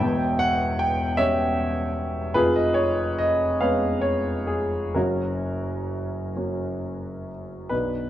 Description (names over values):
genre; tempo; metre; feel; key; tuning
classical, romantic character piece for solo piano; 42-53 BPM (dotted quarters); 6/8; rubato; unclear; A4 = 440 Hz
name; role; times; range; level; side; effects
clear grand piano; solo; 0.0-8.1 s; E1 to G5; -22 LUFS; equal; none
room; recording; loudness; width
wet large studio reverb, RT60 1.2 s; worn, warbling old tape, cassette tape, warbly pitch drift; -22 LUFS; side -12 dB against mid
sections
0.0-7.7 A section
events
none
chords
0.0 C#dim/E; 2.3 C#7/E#; 5.0 F#